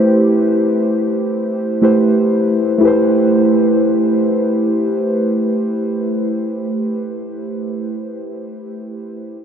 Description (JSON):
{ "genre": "R&B", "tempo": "free time", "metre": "none", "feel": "none", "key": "A minor", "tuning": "A4 = 440 Hz", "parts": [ { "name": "muted felt-like synth keys", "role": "accompaniment", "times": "0.0-9.3 s", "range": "A3 to C5", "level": "-14 LUFS", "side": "equal", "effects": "chorus" } ], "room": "wet huge ambient reverb, RT60 8.5 s", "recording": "dreamy mix soaked in reverb", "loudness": "-14 LUFS", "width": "side -8 dB against mid", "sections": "0.0-2.8 A section; 2.8-6.8 B section", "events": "none", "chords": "0.0 Am7" }